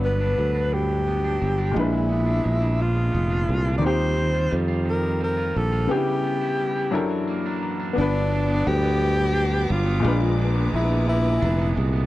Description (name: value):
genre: slow six-eight R&B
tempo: 58 BPM (dotted quarters)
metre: 6/8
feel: straight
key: unclear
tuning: A4 = 440 Hz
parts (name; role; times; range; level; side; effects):
- electric guitar at the edge of break-up; second line; 0.0-12.1 s; F#2 to F#4; -30 LUFS; right 5 dB; none
- clear grand piano; accompaniment; 0.0-12.1 s; Bb2 to F#5; -28 LUFS; left 3 dB; none
- sustaining fretless electric bass; bass; 0.0-12.1 s; F1 to F2; -23 LUFS; equal; none
- breathy tenor saxophone; melody; 0.1-11.8 s; D4 to D5; -26 LUFS; left 1 dB; none
- dark symphonic string section; sustained chords; 8.0-12.1 s; B4 to D6; -34 LUFS; left 2 dB; none
room: light reverb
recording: dry, close 1970s-style studio recording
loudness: -20 LUFS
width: side -16 dB against mid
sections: 0.0-8.0 A section; 8.0-12.1 B section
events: none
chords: 0.0 Gmaj7; 1.7 Bb7b9; 3.8 Eb69; 5.9 C#m7b5; 6.9 F#7alt; 8.0 Gmaj7; 10.0 Bb7b9